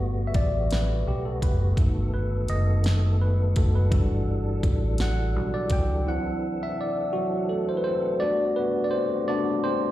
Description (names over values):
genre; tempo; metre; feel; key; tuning
slow six-eight R&B; 56 BPM (dotted quarters); 6/8; straight; G major; A4 = 440 Hz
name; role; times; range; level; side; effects
tine electric piano; accompaniment; 0.0-9.9 s; F#3 to G5; -27 LUFS; equal; phaser, plate reverb, slapback echo
tonewheel organ; sustained chords; 0.0-9.9 s; D#3 to A4; -33 LUFS; left 2 dB; chorus vibrato, slow rotary speaker
vintage muted fingered electric bass; bass; 0.0-6.0 s; F#1 to C#2; -24 LUFS; equal; none
smooth R&B drum kit; drums; 0.3-5.9 s; hi-hat, kick drum, snare drum; -24 LUFS; equal; none
room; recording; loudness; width
light reverb; live gig heard through the venue's PA, recital hall reverb; -22 LUFS; side -14 dB against mid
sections
0.0-8.2 A section; 8.2-9.9 B section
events
tine electric piano solo 0.0-8.2, 8.2-9.9; break 6.1-8.2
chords
0.0 Gmaj9; 1.8 B7; 3.9 Em9/G; 6.1 D9; 8.2 Gmaj9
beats
0.70 | 1.77 2.85 | 3.92 4.99 | 6.06 7.13 | 8.20 9.28